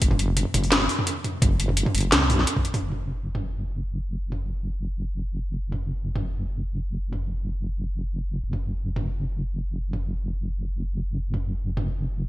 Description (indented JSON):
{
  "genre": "half-time drum and bass",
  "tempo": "171 BPM",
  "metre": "4/4",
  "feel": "swing 53% on 16ths, half-time",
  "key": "unclear",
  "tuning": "A4 = 438 Hz",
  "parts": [
    { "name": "deep soft wobble bass", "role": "bass", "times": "0.0-12.3 s", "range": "F#1 to C#2", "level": "-26 LUFS", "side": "equal", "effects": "chorus" },
    { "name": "drum and bass drum kit", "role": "drums", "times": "0.0-11.8 s", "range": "hi-hat, snare drum, toms", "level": "-24 LUFS", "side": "equal", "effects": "gated reverb" },
    { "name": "electronic kick drum", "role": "drums", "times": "0.0-2.6 s", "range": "none", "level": "-23 LUFS", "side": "equal", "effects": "none" }
  ],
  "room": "little or no reverb",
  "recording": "bright 1980s-style digital production",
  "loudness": "-24 LUFS",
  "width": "side -16 dB against mid",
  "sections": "0.0-2.8 A section; 2.8-12.3 B section",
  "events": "drop 0.0-2.8",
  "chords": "none",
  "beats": "| 0.02 0.37 0.72 1.07 | 1.42 1.77 2.12 2.47 | 2.82 3.17 3.52 3.88 | 4.23 4.58 4.93 5.28 | 5.63 5.98 6.33 6.68 | 7.03 7.38 7.74 8.09 | 8.44 8.79 9.14 9.49 | 9.84 10.19 10.54 10.89 | 11.24 11.60 11.95"
}